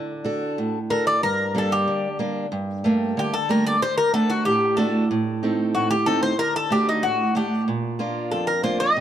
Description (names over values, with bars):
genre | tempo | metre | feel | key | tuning
greek folk | 93 BPM | 2/4 | straight | G harmonic minor | A4 = 442 Hz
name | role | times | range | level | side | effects
picked steel-string acoustic guitar | accompaniment | 0.0-9.0 s | F2 to F#5 | -23 LUFS | right 2 dB | none
Greek bouzouki | melody | 0.9-9.0 s | Eb4 to Eb5 | -22 LUFS | left 2 dB | none
room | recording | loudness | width
moderate plate reverb, RT60 3.2 s | dark, warm production | -20 LUFS | side -10 dB against mid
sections
0.0-2.5 A section; 2.5-9.0 B section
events
none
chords
0.0 D; 1.2 Gm; 2.5 Gmadd9; 3.8 D; 5.1 Adim; 6.4 D; 7.7 Bb